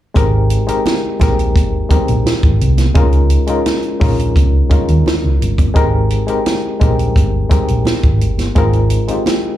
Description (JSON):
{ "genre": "lush 1970s-style soul", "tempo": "86 BPM", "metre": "4/4", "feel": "straight", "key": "Ab major", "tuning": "A4 = 441 Hz", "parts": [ { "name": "barky reed electric piano", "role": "accompaniment", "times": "0.1-9.6 s", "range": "Ab3 to Bb4", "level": "-18 LUFS", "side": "left 3 dB", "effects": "overdrive, fast tremolo, slapback echo" }, { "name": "hollow-body short-scale fingered electric bass", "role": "bass", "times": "0.2-9.1 s", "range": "G1 to Eb2", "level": "-14 LUFS", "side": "equal", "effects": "none" }, { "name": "compact cocktail drum kit", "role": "drums", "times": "0.2-9.4 s", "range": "hi-hat, kick drum, snare drum", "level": "-15 LUFS", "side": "equal", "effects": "none" }, { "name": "congas", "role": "percussion", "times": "0.2-9.4 s", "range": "none", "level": "-26 LUFS", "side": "right 7 dB", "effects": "slapback echo" } ], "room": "light reverb", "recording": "live gig heard through the venue's PA, club reverb", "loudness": "-11 LUFS", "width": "side -13 dB against mid", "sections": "0.2-9.6 A section", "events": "none", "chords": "0.2 Abmaj9; 3.0 Db69; 5.8 Abmaj9; 8.6 Ab69", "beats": "| 0.17 0.86 1.56 2.26 | 2.96 3.66 4.36 5.06 | 5.76 6.46 7.16 7.86 | 8.56 9.26" }